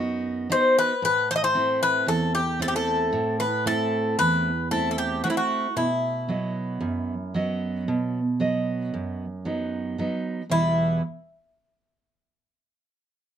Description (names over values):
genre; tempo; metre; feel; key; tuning
greek folk, Greek bouzouki band; 114 BPM (eighths); 9/8; straight; E harmonic minor; A4 = 440 Hz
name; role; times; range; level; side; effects
picked steel-string acoustic guitar; accompaniment; 0.0-11.0 s; E2 to D#5; -26 LUFS; right 3 dB; none
Greek bouzouki; melody; 0.5-11.0 s; E4 to D#5; -23 LUFS; left 2 dB; none
room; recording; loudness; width
light reverb; close, detailed microphones; -22 LUFS; side -9 dB against mid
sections
0.0-10.5 A section; 10.5-13.4 B section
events
none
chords
0.0 B; 1.0 Am; 5.8 B; 10.5 Em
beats
0.50 | 1.03 1.55 2.08 2.60 3.13 3.66 4.18 4.71 5.24 | 5.76 6.29 6.82 7.34 7.87 8.40 8.93 9.46 9.99 | 10.51